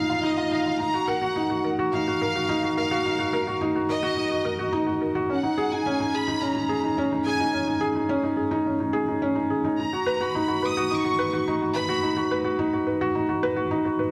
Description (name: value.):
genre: electronica.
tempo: 107 BPM.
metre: 4/4.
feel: straight.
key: unclear.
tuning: A4 = 442 Hz.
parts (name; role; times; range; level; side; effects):
rich chamber violin section; melody; 0.0-12.3 s; Eb5 to D#6; -31 LUFS; equal; tape echo.
felt-muted upright piano; riff; 0.0-14.1 s; Db4 to B4; -26 LUFS; equal; none.
room: wet echo chamber reverb, RT60 1.5 s.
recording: none.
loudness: -25 LUFS.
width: mono.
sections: 0.8-14.1 A section.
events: drop 0.8-14.1.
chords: 0.0 Bb5; 0.8 Ebm; 5.3 Dbsus2; 9.8 B.